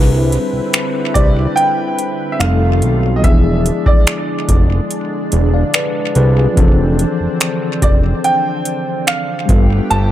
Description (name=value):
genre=contemporary R&B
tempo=72 BPM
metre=4/4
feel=straight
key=unclear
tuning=A4 = 440 Hz
part: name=tine electric piano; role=accompaniment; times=0.0-10.1 s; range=E3 to F5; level=-20 LUFS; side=left 2 dB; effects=overdrive, fast stereo tremolo
part: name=lush unison pad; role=sustained chords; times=0.0-10.1 s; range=D3 to B4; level=-22 LUFS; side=equal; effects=chorus
part: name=fat analog bass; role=bass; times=0.0-10.1 s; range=E1 to C2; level=-14 LUFS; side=equal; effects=none
part: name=booming analog drum machine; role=drums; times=0.3-10.1 s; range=finger snaps, hi-hat, kick drum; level=-14 LUFS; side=equal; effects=overdrive
part: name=bright grand piano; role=melody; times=1.1-10.1 s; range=D5 to A5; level=-19 LUFS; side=right 2 dB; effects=tape echo
room=light reverb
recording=echo-heavy mix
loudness=-12 LUFS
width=side -12 dB against mid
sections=0.0-10.1 A section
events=none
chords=0.0 Cmaj9; 2.4 F9; 3.2 E7b9; 6.6 Dm9/F; 9.5 G9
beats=0.74 1.57 2.41 | 3.24 4.07 4.91 5.74 | 6.57 7.41 8.24 9.07 | 9.91